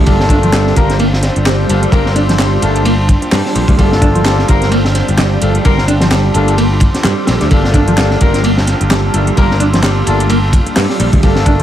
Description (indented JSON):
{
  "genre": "breakbeat, breaks",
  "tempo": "129 BPM",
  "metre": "4/4",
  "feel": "swing 57% on 16ths",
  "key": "G minor",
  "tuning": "A4 = 440 Hz",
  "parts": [
    { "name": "phased analog pad", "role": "sustained chords", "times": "0.0-11.6 s", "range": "G3 to C5", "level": "-20 LUFS", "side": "equal", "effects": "phaser, chorus, sidechain pumping" },
    { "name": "mellow electric guitar", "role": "riff", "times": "0.0-11.6 s", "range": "F3 to D4", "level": "-17 LUFS", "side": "right 1 dB", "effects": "dub echo" },
    { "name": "modern bright picked electric bass", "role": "bass", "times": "0.0-11.6 s", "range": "G1 to G2", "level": "-14 LUFS", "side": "equal", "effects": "none" },
    { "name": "mellow horn section", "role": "stabs", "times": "0.1-11.6 s", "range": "A3 to Bb4", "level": "-19 LUFS", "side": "left 3 dB", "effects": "dub echo" },
    { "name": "crunchy breakbeat drum kit", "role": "drums", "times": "0.1-11.6 s", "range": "hi-hat, kick drum, ride cymbal, snare drum", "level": "-14 LUFS", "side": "equal", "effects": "none" },
    { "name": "garage drum kit", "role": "drums", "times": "0.1-11.6 s", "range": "handclaps, hi-hat", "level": "-22 LUFS", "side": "right 1 dB", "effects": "none" }
  ],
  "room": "light reverb",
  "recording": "vinyl crackle",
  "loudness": "-9 LUFS",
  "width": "side -11 dB against mid",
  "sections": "0.0-11.6 A section",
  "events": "none",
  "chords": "0.0 Gm7"
}